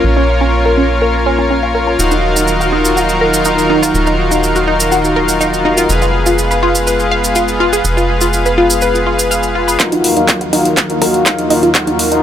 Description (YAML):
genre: progressive house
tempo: 123 BPM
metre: 4/4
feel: straight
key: Eb minor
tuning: A4 = 440 Hz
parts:
  - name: lush unison pad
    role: sustained chords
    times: 0.0-12.2 s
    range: Eb2 to F5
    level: -19 LUFS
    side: equal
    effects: chorus, sidechain pumping
  - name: soft supersaw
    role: stabs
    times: 0.0-12.2 s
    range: Eb4 to F5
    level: -15 LUFS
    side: left 2 dB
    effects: sidechain pumping, low-pass filter, tape echo
  - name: tight sequencer bass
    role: bass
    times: 0.0-9.8 s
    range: Eb1 to Bb1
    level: -18 LUFS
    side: equal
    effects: sidechain pumping
  - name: analog pluck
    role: arpeggios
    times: 0.2-12.2 s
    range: Db4 to F5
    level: -16 LUFS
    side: equal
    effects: chorus, phaser, sidechain pumping, tape echo
  - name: cabasa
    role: percussion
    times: 2.0-9.8 s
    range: none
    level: -20 LUFS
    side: right 3 dB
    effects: none
  - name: big-room dance drum kit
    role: drums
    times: 9.8-12.2 s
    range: handclaps, hi-hat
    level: -15 LUFS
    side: equal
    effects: none
  - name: electronic kick drum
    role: drums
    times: 9.8-11.8 s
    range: none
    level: -21 LUFS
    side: equal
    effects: high-pass filter on kick, high-pass filter on room
room: light reverb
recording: none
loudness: -10 LUFS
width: side -10 dB against mid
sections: 0.0-9.8 A section; 9.8-12.2 B section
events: filter sweep on synth arpeggio sound 0.0-9.8, 9.8-12.2; build-up 9.8-12.2; drum fill 9.8-12.2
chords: 0.0 Bbm; 2.0 Ebmadd9; 5.9 Fdim; 9.8 Ebmadd9